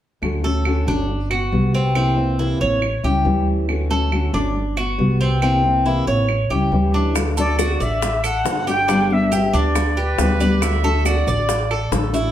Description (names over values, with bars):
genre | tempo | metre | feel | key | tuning
latin, Cuban son and guajira | 138 BPM | 4/4 | straight | D major | A4 = 440 Hz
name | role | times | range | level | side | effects
fingerpicked steel-string acoustic guitar | accompaniment | 0.2-12.3 s | C3 to G4 | -22 LUFS | left 2 dB | none
upright bass | bass | 0.2-12.3 s | G1 to D2 | -21 LUFS | right 1 dB | none
claves | percussion | 0.2-11.9 s | none | -30 LUFS | right 5 dB | none
Cuban tres | arpeggios | 0.4-12.3 s | C4 to D5 | -23 LUFS | equal | none
bongos | percussion | 7.2-12.3 s | none | -26 LUFS | left 5 dB | none
maracas | percussion | 7.2-12.3 s | none | -33 LUFS | right 7 dB | none
jazz flute | melody | 7.4-10.4 s | D5 to G5 | -22 LUFS | right 1 dB | none
bright trumpet | second line | 10.0-11.9 s | B4 to E5 | -24 LUFS | right 3 dB | none
room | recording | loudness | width
wet large studio reverb, RT60 0.8 s | heard from further back in the room | -16 LUFS | side -11 dB against mid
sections
0.2-7.2 A section; 7.2-12.3 B section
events
none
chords
0.2 Dmaj7; 1.1 Gmaj7; 2.0 C7; 2.8 A7; 3.7 Dmaj7; 4.6 Gmaj7; 5.4 C7; 6.3 A7; 7.2 D; 8.9 G; 10.6 D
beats
| 0.22 0.66 1.09 1.52 | 1.96 2.39 2.82 3.25 | 3.69 4.12 4.55 4.99 | 5.42 5.86 6.29 6.72 | 7.16 7.59 8.02 8.46 | 8.89 9.32 9.76 10.19 | 10.62 11.06 11.49 11.92